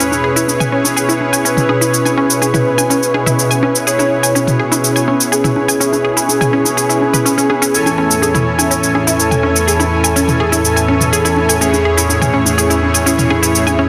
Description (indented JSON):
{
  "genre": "progressive house",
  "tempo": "124 BPM",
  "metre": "4/4",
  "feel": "straight",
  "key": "E major",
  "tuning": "A4 = 440 Hz",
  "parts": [
    { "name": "warm velvety synth lead", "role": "melody", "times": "0.0-13.9 s", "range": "E4 to C#5", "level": "-21 LUFS", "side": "equal", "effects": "chorus, cassette tape, digital delay" },
    { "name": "lush unison pad", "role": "sustained chords", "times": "0.0-13.9 s", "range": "E2 to E4", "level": "-21 LUFS", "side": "equal", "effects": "chorus, phaser" },
    { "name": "unison pluck", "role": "arpeggios", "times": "0.0-13.9 s", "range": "C#4 to G#5", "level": "-20 LUFS", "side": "equal", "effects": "digital delay" },
    { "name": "soft supersaw", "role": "stabs", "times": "0.0-13.9 s", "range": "E3 to G#5", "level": "-20 LUFS", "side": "equal", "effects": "digital delay" },
    { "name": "cabasa", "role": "drums", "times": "0.0-13.8 s", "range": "none", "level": "-20 LUFS", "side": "equal", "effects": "overdrive" },
    { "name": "electronic congas and toms", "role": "percussion", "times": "0.1-13.8 s", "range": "none", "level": "-23 LUFS", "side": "equal", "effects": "none" }
  ],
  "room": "wet lush hall reverb, RT60 1.8 s, digital ambience",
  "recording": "dense, heavily limited modern master",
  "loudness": "-13 LUFS",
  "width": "mono",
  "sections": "0.0-13.9 A section",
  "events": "none",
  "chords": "0.0 E6; 7.7 Amaj7/E"
}